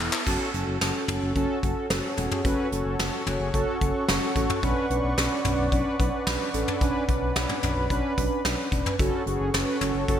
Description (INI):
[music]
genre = synth-pop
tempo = 110 BPM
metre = 4/4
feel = straight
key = F# minor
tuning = A4 = 440 Hz
[part]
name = mellow synth brass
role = accompaniment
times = 0.0-10.2 s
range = B3 to D5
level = -28 LUFS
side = right 1 dB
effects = chorus
[part]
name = smooth synth bass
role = bass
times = 0.0-10.2 s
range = E1 to B1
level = -30 LUFS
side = left 1 dB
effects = none
[part]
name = soft brush drum kit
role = drums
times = 0.1-10.2 s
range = crash cymbal, handclaps, hi-hat, kick drum, snare drum, toms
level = -27 LUFS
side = left 1 dB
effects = gated reverb
[part]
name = warm analog pad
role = sustained chords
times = 0.3-10.2 s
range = A4 to C#6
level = -32 LUFS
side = left 1 dB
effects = chorus
[sound]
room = moderate lush hall reverb, RT60 2.2 s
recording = bright 1980s-style digital production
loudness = -23 LUFS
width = side -9 dB against mid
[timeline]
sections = 0.3-10.2 A section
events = drum fill 0.0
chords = 0.3 F#m; 4.6 Bmadd9; 9.0 F#m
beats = | 0.27 0.81 1.36 1.90 | 2.45 2.99 3.54 4.08 | 4.63 5.18 5.72 6.27 | 6.81 7.36 7.90 8.45 | 8.99 9.54 10.09